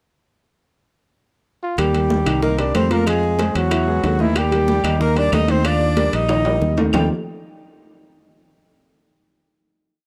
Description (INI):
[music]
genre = Afro-Cuban jazz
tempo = 186 BPM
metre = 4/4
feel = straight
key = Eb major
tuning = A4 = 440 Hz
[part]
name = mellow trumpet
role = melody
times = 1.6-7.1 s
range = E4 to G5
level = -25 LUFS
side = equal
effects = none
[part]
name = clear tenor saxophone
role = second line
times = 1.8-7.1 s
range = E3 to Eb4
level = -28 LUFS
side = equal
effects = none
[part]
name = warm concert grand piano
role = accompaniment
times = 1.8-7.1 s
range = Eb3 to F5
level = -26 LUFS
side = equal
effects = none
[part]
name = fingered electric bass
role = bass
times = 1.8-7.1 s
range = Bb1 to F2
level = -23 LUFS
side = equal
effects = none
[part]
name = bongos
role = percussion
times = 1.8-7.0 s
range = none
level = -34 LUFS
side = equal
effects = none
[part]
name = claves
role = percussion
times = 1.8-7.0 s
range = none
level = -35 LUFS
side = equal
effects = none
[part]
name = congas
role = percussion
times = 1.8-7.0 s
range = none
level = -28 LUFS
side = equal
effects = none
[part]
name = timbales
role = percussion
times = 1.8-7.0 s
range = none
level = -30 LUFS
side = equal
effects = none
[sound]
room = studio reverb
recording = dry, close 1970s-style studio recording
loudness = -18 LUFS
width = mono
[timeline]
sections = 0.5-1.8 pickup bar; 1.8-6.9 A section; 6.9-8.2 final chord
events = drum fill 6.3-6.9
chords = 0.5 N.C.; 1.8 Eb6; 2.4 Cm7; 3.1 Fm; 3.7 Eadd9; 4.4 Ebadd9; 6.9 Eb69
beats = | 0.49 0.82 1.14 1.46 | 1.78 2.11 2.43 2.75 | 3.07 3.39 3.71 4.04 | 4.36 4.68 5.00 5.32 | 5.64 5.97 6.29 6.61 | 6.94